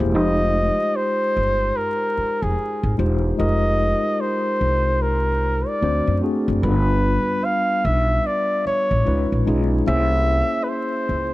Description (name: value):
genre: R&B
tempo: 74 BPM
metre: 4/4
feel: swing 62% on 16ths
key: F minor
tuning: A4 = 440 Hz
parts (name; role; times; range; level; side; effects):
- mellow tine electric piano; accompaniment; 0.0-11.3 s; G3 to C5; -24 LUFS; left 1 dB; medium stereo tremolo
- upright bass; bass; 0.0-11.3 s; E1 to F#2; -21 LUFS; equal; none
- breathy flugelhorn; melody; 0.2-11.3 s; Ab4 to F5; -22 LUFS; equal; none
room: light reverb, small room ambience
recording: vinyl crackle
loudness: -18 LUFS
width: side -17 dB against mid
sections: 0.0-11.3 A section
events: none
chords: 0.1 Fm9; 5.8 D7; 6.6 G7; 9.1 Db9; 9.9 C7b9b13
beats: | 0.13 0.94 1.75 2.56 | 3.38 4.19 5.00 5.81 | 6.62 7.43 8.24 9.05 | 9.86 10.67